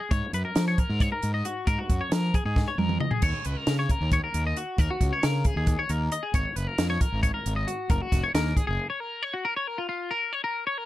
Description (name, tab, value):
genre	math rock and midwest emo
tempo	270 BPM (eighths)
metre	7/8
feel	straight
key	unclear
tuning	A4 = 440 Hz
part	twangy electric guitar	arpeggios	0.0-10.9 s	E#4 to D#5	-29 LUFS	left 3 dB	analog chorus
part	fuzz fingered electric bass	bass	0.1-8.8 s	E#1 to E#3	-28 LUFS	equal	overdrive
part	compact cocktail drum kit	drums	0.1-8.7 s	crash cymbal, hi-hat, kick drum, snare drum, toms	-26 LUFS	equal	none
room	little or no reverb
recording	dark, warm production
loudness	-24 LUFS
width	side -15 dB against mid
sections	0.0-9.4 A section; 9.4-10.9 B section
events	drum fill 2.6-3.2; break 8.8-9.4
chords	0.1 G#9sus4; 3.2 D#m7; 6.3 G#9sus4; 7.9 F#; 9.4 A#m